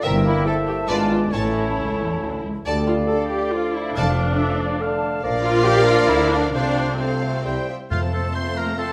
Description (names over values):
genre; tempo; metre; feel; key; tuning
quick classical-period movement for symphony orchestra; 131-143 BPM; 3/4; rubato; D minor, F major from 5.2 s; A4 = 440 Hz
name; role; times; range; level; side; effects
rich studio violin section; melody; 0.0-8.9 s; D5 to C6; -34 LUFS; equal; none
dark clarinet; second line; 0.0-8.9 s; C4 to C5; -30 LUFS; equal; none
large flute ensemble; second line; 0.0-8.9 s; F5 to A5; -34 LUFS; equal; none
warm oboe; second line; 0.0-8.9 s; F4 to F5; -32 LUFS; equal; none
warm studio violin section; second line; 0.0-8.9 s; A4 to C6; -32 LUFS; equal; none
warm bassoon; accompaniment; 0.0-8.9 s; D3 to C#4; -32 LUFS; equal; none
mellow French horn section; sustained chords; 0.0-8.9 s; F3 to F4; -32 LUFS; equal; none
clear chamber double bass section; bass; 0.0-8.9 s; F1 to F2; -29 LUFS; equal; none
warm chamber cello section; bass; 0.0-8.9 s; C#2 to C4; -30 LUFS; equal; none
warm studio viola section; accompaniment; 0.3-8.9 s; A3 to C5; -27 LUFS; equal; none
timpani; percussion; 4.0-4.6, 7.9-8.5 s; F2; -29 LUFS; equal; none
room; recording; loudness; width
wet recital hall reverb, RT60 1.4 s; none; -21 LUFS; mono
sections
0.0-7.9 A section; 7.9-8.9 B section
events
none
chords
0.0 Edim/G; 0.9 G#dim7; 1.3 A; 2.7 Dm; 4.0 Dm/F; 5.2 Bb; 6.5 F/C; 7.5 C; 7.9 F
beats
| 0.04 0.46 0.89 | 1.32 1.77 2.22 | 2.66 3.10 3.53 | 3.96 4.39 4.81 | 5.24 5.66 6.10 | 6.55 7.00 7.46 | 7.92 8.36 8.79